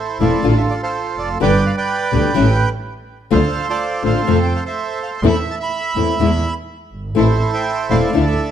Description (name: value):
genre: tango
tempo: 125 BPM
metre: 4/4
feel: rubato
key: A minor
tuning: A4 = 439 Hz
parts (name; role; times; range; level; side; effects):
- bandoneon; melody; 0.0-8.5 s; E4 to C6; -20 LUFS; right 5 dB; none
- nylon-string guitar; accompaniment; 0.2-8.2 s; B2 to G4; -18 LUFS; left 6 dB; none
- dark chamber string section; stabs; 0.2-8.4 s; B3 to C5; -26 LUFS; right 2 dB; none
- clear double bass; bass; 0.2-8.4 s; E1 to F2; -19 LUFS; right 1 dB; none
room: moderate large studio reverb, RT60 1.4 s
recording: dark, warm production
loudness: -15 LUFS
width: side -9 dB against mid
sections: 0.0-8.5 A section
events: none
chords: 0.4 Dm/A; 1.4 G; 2.4 A7; 3.3 Dm7; 4.3 F; 5.2 Am/E; 6.2 E; 7.2 Am